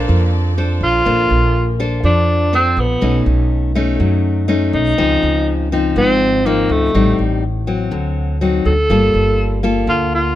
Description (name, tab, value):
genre	bossa nova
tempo	123 BPM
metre	4/4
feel	straight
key	Bb major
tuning	A4 = 437 Hz
part	breathy tenor saxophone	melody	0.0-10.4 s	A3 to A4	-16 LUFS	right 1 dB	none
part	nylon-string guitar	accompaniment	0.0-10.4 s	Ab2 to C5	-18 LUFS	left 4 dB	none
part	rich symphonic string section	sustained chords	0.0-1.0 s	C4 to D5	-31 LUFS	left 1 dB	none
part	upright bass	bass	0.0-10.4 s	G1 to F#2	-17 LUFS	right 1 dB	none
room	little or no reverb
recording	close, detailed microphones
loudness	-13 LUFS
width	side -13 dB against mid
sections	0.0-1.1 A section; 1.1-10.4 A section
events	none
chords	0.0 Bbmaj9; 3.0 B9; 5.0 Dbmaj9; 6.9 Am7b5; 7.9 D7b9; 8.9 Gm9